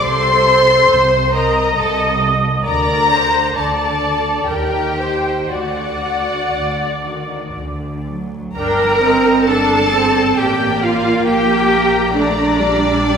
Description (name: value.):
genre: classical, slow romantic movement for string orchestra.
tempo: 57-70 BPM.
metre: 3/4.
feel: rubato.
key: G minor.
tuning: A4 = 439 Hz.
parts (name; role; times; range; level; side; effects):
muted studio violin section; melody; 0.0-13.2 s; D5 to C6; -19 LUFS; left 4 dB; none.
muted studio violin section; second line; 0.0-13.2 s; F#4 to Bb5; -19 LUFS; equal; none.
muted studio viola section; accompaniment; 0.0-13.2 s; G3 to Eb5; -19 LUFS; right 2 dB; none.
muted studio cello section; bass; 0.0-13.2 s; C3 to Bb4; -19 LUFS; right 1 dB; none.
muted studio double bass section; bass; 0.0-13.2 s; G1 to Eb2; -25 LUFS; right 1 dB; none.
room: wet scoring stage reverb, RT60 1.8 s.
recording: minimal, uncompressed stereo recording.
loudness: -13 LUFS.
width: side -7 dB against mid.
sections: 0.0-8.6 A section; 8.6-13.2 A section.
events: none.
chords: 0.0 Adim/C; 2.7 D5; 4.5 Eb; 5.5 D; 8.6 Gm; 11.3 Gm/Bb.